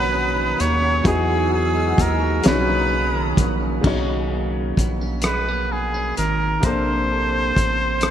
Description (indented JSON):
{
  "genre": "slow six-eight R&B",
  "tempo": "43 BPM (dotted quarters)",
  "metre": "6/8",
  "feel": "straight",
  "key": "B major",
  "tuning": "A4 = 445 Hz",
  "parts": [
    { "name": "trumpet with straight mute", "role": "melody", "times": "0.0-8.1 s", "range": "G#4 to C#5", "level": "-22 LUFS", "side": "equal", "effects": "ping-pong delay" },
    { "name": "electric guitar at the edge of break-up", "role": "second line", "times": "0.0-8.1 s", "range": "B2 to B#4", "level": "-26 LUFS", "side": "right 4 dB", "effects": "wide subtle chorus, ping-pong delay" },
    { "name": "clear baby grand piano", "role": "accompaniment", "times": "0.0-8.1 s", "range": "B#2 to C#5", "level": "-26 LUFS", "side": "left 3 dB", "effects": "none" },
    { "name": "hollow soft pad", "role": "sustained chords", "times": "0.0-3.8 s", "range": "D#4 to E6", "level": "-29 LUFS", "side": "right 1 dB", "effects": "ensemble chorus" },
    { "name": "rubbery square bass", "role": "bass", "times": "0.0-8.1 s", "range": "G#1 to E2", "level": "-24 LUFS", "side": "equal", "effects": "none" },
    { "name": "cloth-damped thuddy drum kit", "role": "drums", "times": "0.6-8.1 s", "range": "crash cymbal, hi-hat, kick drum, rim click, snare drum", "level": "-21 LUFS", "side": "equal", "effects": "gated reverb" }
  ],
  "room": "moderate lush hall reverb, RT60 2.5 s",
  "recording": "bright 1980s-style digital production, lossy compression artefacts",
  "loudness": "-18 LUFS",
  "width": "side -10 dB against mid",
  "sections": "0.0-3.8 A section; 3.8-8.1 B section",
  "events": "none",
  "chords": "0.0 Bmaj9; 1.1 Emaj9; 2.4 Bmaj9; 6.6 A#maj9",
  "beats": "| 1.05 2.45 | 3.84 5.24 | 6.63 8.03"
}